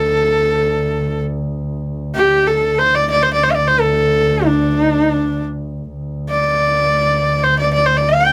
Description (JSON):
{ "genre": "mongolian traditional, Mongolian folk", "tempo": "free time", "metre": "none", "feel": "none", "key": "unclear", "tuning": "A4 = 439 Hz", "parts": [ { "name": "clear horsehead fiddle", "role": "melody", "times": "0.0-8.3 s", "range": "D4 to G5", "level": "-16 LUFS", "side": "equal", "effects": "none" }, { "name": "muted double bass", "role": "drone", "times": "0.0-8.3 s", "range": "D2", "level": "-23 LUFS", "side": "equal", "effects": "none" } ], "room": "moderate booth ambience, RT60 0.2 s", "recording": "none", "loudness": "-16 LUFS", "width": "mono", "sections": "0.0-5.9 A section; 5.9-8.3 A section", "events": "none", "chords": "none" }